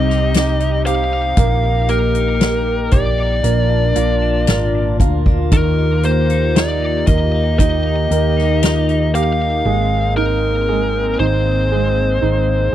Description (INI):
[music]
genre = pop ballad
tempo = 58 BPM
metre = 4/4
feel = straight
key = Eb major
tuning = A4 = 440 Hz
[part]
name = biting lead guitar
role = melody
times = 0.0-12.7 s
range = Bb4 to F5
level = -20 LUFS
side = left 2 dB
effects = overdrive
[part]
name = warm grand piano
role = accompaniment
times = 0.0-12.7 s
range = C3 to Bb4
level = -22 LUFS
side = right 16 dB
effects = none
[part]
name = warm analog pad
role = sustained chords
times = 0.0-12.7 s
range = C3 to G4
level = -24 LUFS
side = left 2 dB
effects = lush chorus
[part]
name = twelve-string electric guitar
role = arpeggios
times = 0.0-10.3 s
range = Bb2 to G4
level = -24 LUFS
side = left 6 dB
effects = phaser
[part]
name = hollow-body short-scale fingered electric bass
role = bass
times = 0.0-12.7 s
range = Ab1 to Eb2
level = -18 LUFS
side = equal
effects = none
[part]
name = soft-mallet drum kit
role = drums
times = 0.1-9.4 s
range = hi-hat, kick drum, snare drum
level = -17 LUFS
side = equal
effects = none
[sound]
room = little or no reverb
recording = dry, close 1970s-style studio recording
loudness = -13 LUFS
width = side -12 dB against mid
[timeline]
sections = 0.0-12.7 A section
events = none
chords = 0.0 Cm; 1.4 Eb/Bb; 3.4 Bb; 5.5 Ebadd9; 9.7 Abadd9